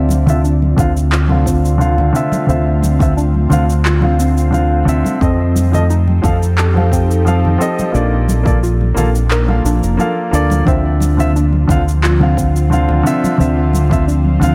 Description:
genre	sunset chillout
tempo	88 BPM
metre	4/4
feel	straight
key	D minor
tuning	A4 = 440 Hz
part	warm grand piano	accompaniment	0.0-14.5 s	D3 to F5	-20 LUFS	equal	low-pass filter, digital delay
part	ethereal airy pad	sustained chords	0.0-14.5 s	D3 to A4	-25 LUFS	equal	ensemble chorus, built-in reverb, phaser
part	soft round pluck	arpeggios	0.0-14.4 s	C4 to Bb4	-26 LUFS	equal	chorus, digital delay
part	fingered electric bass	bass	0.0-14.5 s	F1 to F2	-16 LUFS	equal	none
part	electronic cabasa and handclaps	drums	0.1-14.5 s	none	-26 LUFS	equal	overdrive
part	congas	percussion	0.1-14.5 s	none	-24 LUFS	equal	none
part	electronic kick drum	drums	0.8-14.0 s	none	-19 LUFS	equal	overdrive
room	light reverb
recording	none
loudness	-14 LUFS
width	mono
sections	0.0-14.5 A section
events	filter sweep on grand piano 0.0-14.5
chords	0.0 Dm9; 5.2 F7; 7.9 Bbmaj7; 10.7 Dm9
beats	0.44 1.12 1.80 | 2.48 3.17 3.85 4.53 | 5.21 5.89 6.58 7.26 | 7.94 8.62 9.30 9.98 | 10.67 11.35 12.03 12.71 | 13.39 14.07

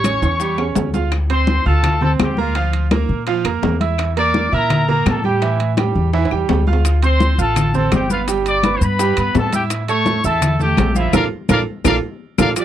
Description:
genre	latin, salsa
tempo	168 BPM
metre	4/4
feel	straight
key	D minor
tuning	A4 = 440 Hz
part	bright trumpet section	melody	0.0-12.6 s	E4 to D6	-20 LUFS	left 3 dB	none
part	bright concert grand piano	accompaniment	0.0-12.6 s	E3 to F6	-21 LUFS	right 9 dB	none
part	upright bass	bass	0.0-12.5 s	G1 to Bb2	-19 LUFS	equal	none
part	bongos	percussion	0.0-12.6 s	none	-26 LUFS	left 8 dB	none
part	claves	percussion	0.0-12.6 s	none	-28 LUFS	left 21 dB	none
part	congas	percussion	0.0-12.6 s	none	-22 LUFS	left 2 dB	none
part	maracas	percussion	0.0-1.1, 6.9-12.6 s	none	-30 LUFS	left 29 dB	none
part	timbales	percussion	0.0-12.6 s	none	-26 LUFS	right 6 dB	none
room	little or no reverb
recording	dry, close 1970s-style studio recording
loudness	-14 LUFS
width	side -11 dB against mid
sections	0.0-1.1 A section; 1.1-12.6 A section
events	drum fill 0.2-1.1, 6.1-6.8, 11.1-12.6; band accent 11.1-12.6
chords	0.0 A7; 1.1 Dm7; 2.6 Bb5; 4.0 Em7b5; 5.4 A5; 6.8 Dm7; 8.3 Gadd9; 9.7 A7; 11.1 Bbmaj7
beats	0.05 0.41 0.76 | 1.12 1.48 1.84 2.20 | 2.56 2.91 3.27 3.63 | 3.99 4.34 4.70 5.06 | 5.42 5.78 6.13 6.49 | 6.85 7.21 7.56 7.92 | 8.28 8.64 8.99 9.35 | 9.71 10.06 10.42 10.78 | 11.14 11.49 11.85 12.21 | 12.57

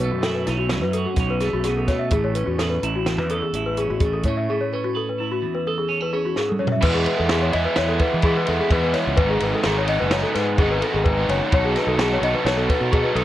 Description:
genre	math rock and midwest emo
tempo	128 BPM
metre	5/4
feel	straight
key	A lydian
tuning	A4 = 440 Hz
part	twelve-string electric guitar	accompaniment	0.0-6.8 s	E2 to B4	-27 LUFS	right 6 dB	spring reverb
part	worn celesta	arpeggios	0.0-13.2 s	E4 to E5	-24 LUFS	left 3 dB	none
part	fuzz fingered electric bass	bass	0.0-13.2 s	F#1 to E3	-25 LUFS	equal	overdrive
part	compact cocktail drum kit	drums	0.2-13.2 s	crash cymbal, hi-hat, kick drum, ride cymbal, snare drum, toms	-24 LUFS	equal	none
part	raw garage guitar	riff	6.8-13.2 s	G#2 to A4	-23 LUFS	right 3 dB	overdrive
room	light reverb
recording	worn, warbling old tape, cassette tape, warbly pitch drift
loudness	-19 LUFS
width	side -13 dB against mid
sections	0.0-6.8 A section; 6.8-13.2 B section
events	drum fill 6.4-6.8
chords	0.0 B9sus4; 2.1 Amaj9; 6.8 E6; 9.2 G#m7; 11.5 B13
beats	0.24 0.71 1.18 1.65 | 2.12 2.59 3.06 3.54 4.01 | 4.48 4.95 5.42 5.89 6.36 | 6.83 7.30 7.77 8.24 8.71 | 9.18 9.65 10.12 10.59 11.06 | 11.52 11.99 12.46 12.93

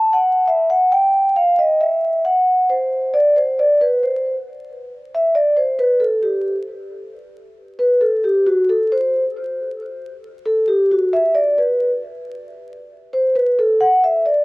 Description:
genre	hip hop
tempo	90 BPM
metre	4/4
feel	swing 65% on 16ths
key	G major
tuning	A4 = 439 Hz
part	vibraphone with soft mallets	solo	0.0-14.4 s	F#4 to A5	-15 LUFS	equal	cassette tape, tape echo
room	moderate booth ambience, RT60 0.2 s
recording	home recording on cassette, vinyl crackle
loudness	-14 LUFS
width	side -24 dB against mid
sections	0.0-4.5 A section; 4.5-14.4 A section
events	vibraphone solo 0.0-4.5, 4.5-14.4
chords	none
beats	0.47 1.13 | 1.80 2.46 3.13 3.80 | 4.46 5.13 5.80 6.46 | 7.13 7.80 8.46 9.13 | 9.80 10.46 11.13 11.80 | 12.46 13.13 13.80

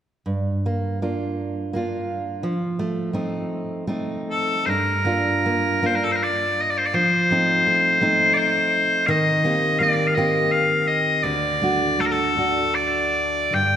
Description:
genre	celtic folk, Celtic slow air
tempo	76-86 BPM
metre	3/4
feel	rubato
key	G minor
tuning	A4 = 441 Hz
part	fingerpicked steel-string acoustic guitar	accompaniment	0.3-13.8 s	D2 to G4	-23 LUFS	right 1 dB	none
part	loud bright bagpipes	melody	4.3-13.8 s	A4 to G5	-19 LUFS	left 1 dB	slapback echo
room	wet church reverb, RT60 2.8 s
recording	none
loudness	-19 LUFS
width	side -9 dB against mid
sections	0.3-4.7 A section; 4.7-13.8 B section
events	none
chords	0.3 Gm7; 2.5 F7; 4.7 Gm7; 6.9 F7; 9.1 Eb6; 11.2 D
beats	| 0.26 1.03 1.74 | 2.46 3.17 3.90 | 4.67 5.45 6.20 | 6.93 7.66 8.37 | 9.08 9.80 10.52 | 11.25 11.99 12.75 | 13.53

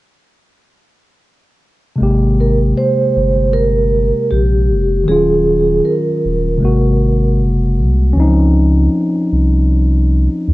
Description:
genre	hip hop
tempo	78 BPM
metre	4/4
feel	swing 62% on 16ths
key	Ab major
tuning	A4 = 440 Hz
part	mellow tine electric piano	accompaniment	2.0-10.5 s	C3 to G4	-16 LUFS	left 1 dB	low-pass filter
part	warm sub bass	bass	2.0-10.5 s	Eb1 to Eb2	-14 LUFS	equal	none
part	vibraphone with soft mallets	melody	2.4-7.3 s	G4 to C5	-16 LUFS	right 2 dB	low-pass filter
room	light reverb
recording	cassette tape, nothing above 10.7 kHz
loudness	-11 LUFS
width	side -18 dB against mid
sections	2.0-10.5 A section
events	none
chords	2.0 Abmaj9; 5.1 Ebm9; 6.6 Ab9; 8.2 Dbmaj9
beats	| 2.00 2.77 3.54 4.31 | 5.08 5.85 6.62 7.39 | 8.16 8.93 9.69 10.46

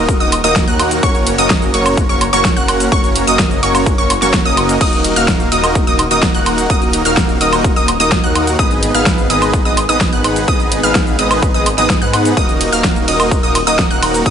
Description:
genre	EDM, festival progressive house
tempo	127 BPM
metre	4/4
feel	straight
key	Eb minor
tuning	A4 = 440 Hz
part	wide unison pluck	arpeggios	0.0-14.3 s	Db6 to Gb6	-18 LUFS	right 1 dB	sidechain pumping, digital delay
part	dense compressed supersaw	riff	0.0-14.3 s	Bb3 to Gb5	-16 LUFS	equal	sidechain pumping, digital delay
part	wide detuned saw bass	bass	0.0-14.3 s	Eb1 to Ab2	-21 LUFS	equal	chorus, tube saturation, sidechain pumping
part	big-room dance drum kit	drums	0.1-14.3 s	crash cymbal, hi-hat, ride cymbal, shaker, snare drum, woodblock	-18 LUFS	right 1 dB	overdrive, small room ambience
part	electronic kick drum	drums	0.1-14.3 s	none	-16 LUFS	equal	small room ambience
room	light reverb, digital ambience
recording	nothing above 11.0 kHz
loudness	-11 LUFS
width	side -8 dB against mid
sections	0.0-14.3 A section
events	none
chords	0.0 Ebm; 1.0 Gb; 4.8 Ebm; 8.6 Abm; 12.4 Ebm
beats	0.09 0.56 | 1.03 1.50 1.98 2.45 | 2.92 3.39 3.87 4.34 | 4.81 5.28 5.75 6.23 | 6.70 7.17 7.64 8.12 | 8.59 9.06 9.54 10.01 | 10.48 10.95 11.43 11.90 | 12.37 12.84 13.31 13.79 | 14.26

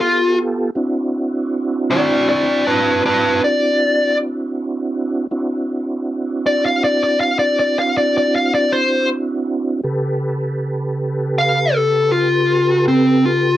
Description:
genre	blues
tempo	53 BPM (dotted quarters)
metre	12/8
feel	straight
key	D mixolydian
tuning	A4 = 439 Hz
part	dark smooth lead guitar	melody	0.0-13.6 s	C4 to F5	-14 LUFS	left 1 dB	overdrive
part	mellow tonewheel organ	sustained chords	0.0-13.6 s	C#3 to B4	-19 LUFS	right 2 dB	chorus vibrato, slow rotary speaker
room	light reverb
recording	dry, close 1970s-style studio recording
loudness	-15 LUFS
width	side -13 dB against mid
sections	0.0-13.6 A section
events	lead electric guitar solo 0.0-13.6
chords	0.0 G9; 0.8 D9; 9.8 A9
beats	| 0.75 1.89 3.03 4.17 | 5.30 6.44 7.57 8.71 | 9.84 10.97 12.11 13.24

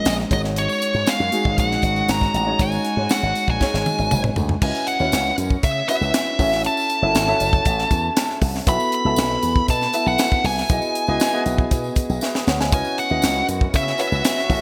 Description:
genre	polished 1980s jazz-funk pop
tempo	118 BPM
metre	4/4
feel	straight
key	C# minor from 4.6 s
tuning	A4 = 440 Hz
part	nasal lead guitar with a parked wah	melody	0.0-14.6 s	Db5 to B5	-24 LUFS	equal	overdrive
part	dark grand piano	accompaniment	0.0-14.6 s	Ab3 to G#5	-27 LUFS	equal	lush chorus
part	slap bass with an envelope filter	bass	0.1-14.6 s	Gb1 to C#3	-27 LUFS	equal	none
part	tight funk drum kit	drums	0.1-14.6 s	crash cymbal, hi-hat, kick drum, snare drum, toms	-24 LUFS	equal	gated reverb
part	tambourine	percussion	0.1-14.6 s	none	-39 LUFS	equal	none
part	warm brass ensemble	sustained chords	0.6-4.6, 12.7-14.6 s	C#3 to Gb4	-36 LUFS	equal	none
room	moderate lush hall reverb, RT60 2.4 s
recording	bright 1980s-style digital production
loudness	-20 LUFS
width	mono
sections	0.0-4.6 A section; 4.6-14.6 B section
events	drum fill 3.6-4.6, 12.2-12.7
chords	0.3 Ab7sus4; 4.6 C#m11; 6.4 A6; 8.7 B7sus4; 10.7 Emaj9/B; 12.7 C#m11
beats	0.06 | 0.56 1.07 1.58 2.09 | 2.59 3.10 3.61 4.11 | 4.62 5.13 5.63 6.14 | 6.64 7.15 7.66 8.16 | 8.67 9.18 9.68 10.19 | 10.70 11.20 11.71 12.22 | 12.72 13.23 13.74 14.24

